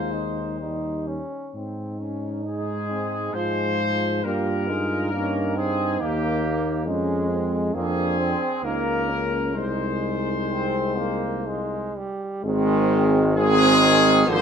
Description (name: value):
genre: classical, hymn-like piece for brass band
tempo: 62-70 BPM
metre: 3/4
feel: rubato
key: Ab major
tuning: A4 = 441 Hz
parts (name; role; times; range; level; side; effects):
- warm trumpet section; melody; 0.0-14.4 s; G4 to C5; -25 LUFS; left 2 dB; none
- warm French horn section; second line; 0.0-14.4 s; Bb3 to F4; -27 LUFS; right 6 dB; none
- bright trombone section; accompaniment; 0.0-14.4 s; F3 to Eb4; -29 LUFS; left 5 dB; none
- brilliant trombone; accompaniment; 0.0-14.4 s; D3 to F4; -28 LUFS; right 2 dB; none
- warm tuba; bass; 0.0-14.4 s; Ab1 to Ab2; -27 LUFS; left 1 dB; none
room: light reverb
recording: close, detailed microphones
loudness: -21 LUFS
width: side -7 dB against mid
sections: 0.0-12.4 A section; 12.4-14.4 B section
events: none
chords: 0.0 Ab/Eb; 0.6 Eb; 1.6 Ab; 3.4 Ab6; 4.2 Eb/G; 6.9 Db/F; 7.7 Bb7/F; 8.6 Eb5/Db; 9.6 Ab/C; 12.4 Ab